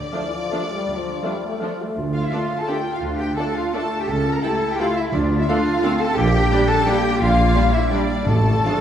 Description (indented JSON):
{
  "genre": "classical",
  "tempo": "170 BPM",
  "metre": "3/4",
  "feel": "uneven beats, rubato",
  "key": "D minor",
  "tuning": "A4 = 440 Hz",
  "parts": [
    { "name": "warm symphonic violin section", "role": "melody", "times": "0.0-8.7 s", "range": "D5 to G5", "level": "-33 LUFS", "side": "left 4 dB", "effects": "none" },
    { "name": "clear symphonic double bass section", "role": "bass", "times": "0.0-8.6 s", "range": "A1 to D2", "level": "-24 LUFS", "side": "right 2 dB", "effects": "none" },
    { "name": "rich symphonic cello section", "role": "bass", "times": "0.0-8.8 s", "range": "D3 to Bb4", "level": "-24 LUFS", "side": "right 2 dB", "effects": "none" },
    { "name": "clear symphonic violin section", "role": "second line", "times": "0.1-8.8 s", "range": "F4 to Bb5", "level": "-29 LUFS", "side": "left 4 dB", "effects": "none" },
    { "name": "hollow flute section", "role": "second line", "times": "0.1-8.8 s", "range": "D5 to F6", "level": "-27 LUFS", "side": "left 2 dB", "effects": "none" },
    { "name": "rich symphonic viola section", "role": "accompaniment", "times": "0.1-8.7 s", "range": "F3 to A4", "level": "-30 LUFS", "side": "right 1 dB", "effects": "none" },
    { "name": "warm bassoon", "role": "accompaniment", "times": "0.1-1.7 s", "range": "A3", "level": "-34 LUFS", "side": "right 2 dB", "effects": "none" },
    { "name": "warm French horn section", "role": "sustained chords", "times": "0.1-8.8 s", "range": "E3 to G4", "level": "-28 LUFS", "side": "left 2 dB", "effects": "none" },
    { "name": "bright clarinet", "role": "second line", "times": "2.0-8.8 s", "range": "G3 to F4", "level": "-26 LUFS", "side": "left 2 dB", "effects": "none" },
    { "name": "warm tuba", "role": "bass", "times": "2.0-8.6 s", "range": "A1 to D2", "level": "-27 LUFS", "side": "right 1 dB", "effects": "none" },
    { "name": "timpani", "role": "percussion", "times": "5.1-5.6, 8.3-8.8 s", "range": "A2 to D3", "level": "-24 LUFS", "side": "left 1 dB", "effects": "none" }
  ],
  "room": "wet concert hall reverb, RT60 2.3 s",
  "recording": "heard from further back in the room",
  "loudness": "-18 LUFS",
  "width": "side -9 dB against mid",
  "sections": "0.0-2.0 A section; 2.0-8.8 A section",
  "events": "none",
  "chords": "0.0 Dm; 4.1 A7/C#; 5.1 Dm; 6.2 Gm/Bb; 8.3 Dm/A",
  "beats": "0.13 0.51 | 0.88 1.24 1.62 | 1.97 2.32 2.69 | 3.03 3.37 3.74 | 4.08 4.43 4.79 | 5.13 5.47 5.83 | 6.16 6.51 6.86 | 7.20 7.55 7.91 | 8.28 8.64"
}